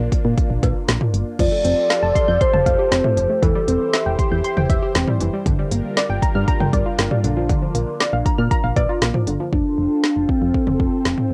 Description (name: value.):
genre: synth-pop.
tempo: 118 BPM.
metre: 4/4.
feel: straight.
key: F major.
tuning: A4 = 442 Hz.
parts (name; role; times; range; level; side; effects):
hollow clarinet-like synth lead; melody; 0.0-5.2, 9.5-11.3 s; C4 to D5; -22 LUFS; equal; chorus, cassette tape, plate reverb.
phased analog pad; sustained chords; 0.0-11.3 s; E3 to G5; -31 LUFS; equal; phaser, chorus, plate reverb.
solid FM bass; bass; 0.0-11.3 s; E1 to Bb2; -24 LUFS; equal; none.
deep house drum kit; drums; 0.1-11.3 s; cowbell, crash cymbal, hi-hat, kick drum, snare drum, toms; -23 LUFS; equal; cassette tape.
warbly dusty pluck; arpeggios; 1.4-9.5 s; D3 to G6; -26 LUFS; equal; chorus, analog delay.
room: light reverb.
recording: home recording on cassette.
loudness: -19 LUFS.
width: mono.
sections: 0.0-1.4 A section; 1.4-9.5 B section; 9.5-11.3 C section.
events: none.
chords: 0.0 Gm7 (rootless); 1.4 Fadd9; 3.4 C/E; 5.5 Gm7; 9.5 Fadd9.